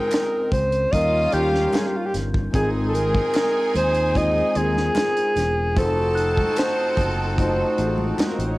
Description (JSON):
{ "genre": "lush 1970s-style soul", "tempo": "74 BPM", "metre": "4/4", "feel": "straight", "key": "F minor", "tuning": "A4 = 439 Hz", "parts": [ { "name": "mellow alto saxophone", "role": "melody", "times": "0.0-8.2 s", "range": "F4 to Eb5", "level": "-22 LUFS", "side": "equal", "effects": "cassette tape, plate reverb" }, { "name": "clear symphonic violin section", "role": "second line", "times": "0.0-8.6 s", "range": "Bb3 to A5", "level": "-32 LUFS", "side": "equal", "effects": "plate reverb" }, { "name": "mellow tine electric piano", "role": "accompaniment", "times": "0.0-8.6 s", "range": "G3 to Eb5", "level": "-28 LUFS", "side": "left 2 dB", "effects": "phaser, plate reverb" }, { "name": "warm horn section", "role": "stabs", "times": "0.0-8.5 s", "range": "Ab3 to Ab4", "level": "-31 LUFS", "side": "right 1 dB", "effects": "plate reverb, tape echo" }, { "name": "tight funk drum kit", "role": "drums", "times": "0.1-8.6 s", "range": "hi-hat, kick drum, snare drum", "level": "-25 LUFS", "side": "equal", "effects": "cassette tape" }, { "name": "group handclap", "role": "percussion", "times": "0.1-8.4 s", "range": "none", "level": "-38 LUFS", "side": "left 1 dB", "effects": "none" }, { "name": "fingered electric bass", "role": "bass", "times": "0.5-8.5 s", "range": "E1 to Eb2", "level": "-25 LUFS", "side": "equal", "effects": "tube saturation" }, { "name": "congas", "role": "percussion", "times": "0.9-8.4 s", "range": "none", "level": "-34 LUFS", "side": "right 2 dB", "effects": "none" }, { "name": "glockenspiel with soft plastic mallets", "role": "texture", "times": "1.3-7.7 s", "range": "Gb6 to G6", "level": "-37 LUFS", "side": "equal", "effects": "none" } ], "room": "light reverb", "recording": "home recording on cassette", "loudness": "-18 LUFS", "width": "side -19 dB against mid", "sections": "0.0-8.6 A section", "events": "none", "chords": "0.0 Bbm9; 0.9 Eb9; 2.5 Ab6; 5.8 F7b9" }